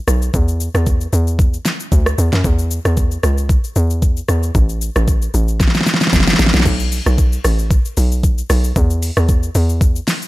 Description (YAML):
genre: amapiano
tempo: 114 BPM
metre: 4/4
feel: swing 55% on 16ths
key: unclear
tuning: A4 = 440 Hz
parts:
  - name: hollow log drum bass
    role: bass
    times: 0.1-10.0 s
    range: F#1 to F#2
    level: -16 LUFS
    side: equal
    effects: none
  - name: smooth R&B drum kit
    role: drums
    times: 0.1-10.3 s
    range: crash cymbal, hi-hat, kick drum, rim click, shaker, snare drum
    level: -16 LUFS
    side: equal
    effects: none
room: digital ambience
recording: none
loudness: -13 LUFS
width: side -18 dB against mid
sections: 0.0-6.7 A section; 6.7-10.3 B section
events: drum fill 5.6-6.7; drop 6.7-10.3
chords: none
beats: | 0.34 0.86 1.39 1.92 | 2.44 2.97 3.50 4.02 | 4.55 5.08 5.60 6.13 | 6.66 7.18 7.71 8.23 | 8.76 9.29 9.81